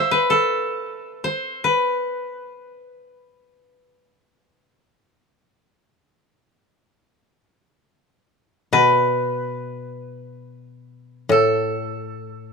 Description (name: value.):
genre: japanese traditional, Japanese chamber music.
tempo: free time.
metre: none.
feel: none.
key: A hirajoshi.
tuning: A4 = 442 Hz.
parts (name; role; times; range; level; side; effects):
koto; melody; 0.0-12.5 s; A4 to E5; -20 LUFS; equal; none.
koto; accompaniment; 8.7-12.5 s; A2 to B2; -23 LUFS; left 1 dB; none.
room: light reverb.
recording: close, detailed microphones.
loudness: -18 LUFS.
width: side -4 dB against mid.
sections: 0.0-12.5 A section.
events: slowing down 3.8-12.5.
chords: none.